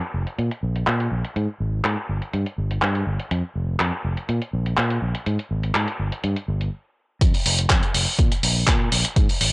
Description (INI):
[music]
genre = filtered disco house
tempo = 123 BPM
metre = 4/4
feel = straight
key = unclear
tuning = A4 = 444 Hz
[part]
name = overdriven fingered electric bass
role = bass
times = 0.1-9.5 s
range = F1 to Bb2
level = -23 LUFS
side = equal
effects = sidechain pumping, low-pass filter
[part]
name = dusty soul sampler-style drum kit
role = drums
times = 0.3-9.5 s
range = handclaps, hi-hat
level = -23 LUFS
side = equal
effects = low-pass filter on snare, sidechain pumping on hats, low-pass filter on hats, low-pass filter on room
[part]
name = electronic kick drum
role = drums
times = 7.2-9.3 s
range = none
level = -19 LUFS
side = equal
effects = none
[sound]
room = moderate spring reverb, RT60 1.8 s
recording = home recording on cassette, nothing above 10.9 kHz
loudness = -20 LUFS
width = side -27 dB against mid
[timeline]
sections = 0.0-7.2 A section; 7.2-9.5 B section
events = filter sweep on fingered electric bass 0.0-7.2; stop 6.7-7.2; drop 7.2-9.5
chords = none